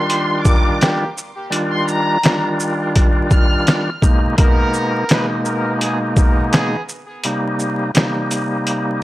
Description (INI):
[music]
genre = hip hop, boom-bap hip-hop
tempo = 84 BPM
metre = 4/4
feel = swing 56% on 16ths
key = Eb major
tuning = A4 = 441 Hz
[part]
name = warm studio violin section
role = melody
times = 0.0-3.8 s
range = Bb5 to F6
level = -23 LUFS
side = equal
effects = high-pass filter, low-pass filter, tape echo
[part]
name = bright tonewheel organ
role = accompaniment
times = 0.0-9.0 s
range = Cb3 to F4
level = -19 LUFS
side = equal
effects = overdrive, fast rotary speaker, cassette tape, high-pass filter, low-pass filter
[part]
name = mellow trumpet section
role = stabs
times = 0.0-6.8 s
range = G3 to Cb5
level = -24 LUFS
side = right 1 dB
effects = high-pass filter, low-pass filter, tape echo
[part]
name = trip hop sampler-style drum kit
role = drums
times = 0.1-8.9 s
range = hi-hat, kick drum, shaker, snare drum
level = -15 LUFS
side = equal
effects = overdrive
[sound]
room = digital ambience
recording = dry, gritty hardware recording, transformer saturation, vinyl crackle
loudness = -14 LUFS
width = side -16 dB against mid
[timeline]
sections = 0.0-9.0 A section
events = none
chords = 0.0 Ebmaj9; 4.0 Abmadd9; 7.2 Cm7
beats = 0.10 0.81 | 1.53 2.24 2.96 3.67 | 4.38 5.10 5.81 6.53 | 7.24 7.96 8.67